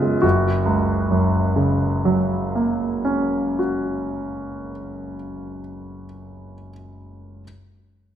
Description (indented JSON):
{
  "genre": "classical, romantic character piece for solo piano",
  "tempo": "48 BPM (dotted quarters)",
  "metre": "6/8",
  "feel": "rubato",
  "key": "F# major",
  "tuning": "A4 = 444 Hz",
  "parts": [
    { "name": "clear concert grand piano", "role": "solo", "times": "0.0-7.4 s", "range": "F#1 to C#5", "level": "-20 LUFS", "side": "equal", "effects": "none" }
  ],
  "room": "wet recital hall reverb, RT60 1.4 s",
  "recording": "none",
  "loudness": "-18 LUFS",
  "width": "side -10 dB against mid",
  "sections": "0.2-5.2 A section",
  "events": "none",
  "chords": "0.2 F#"
}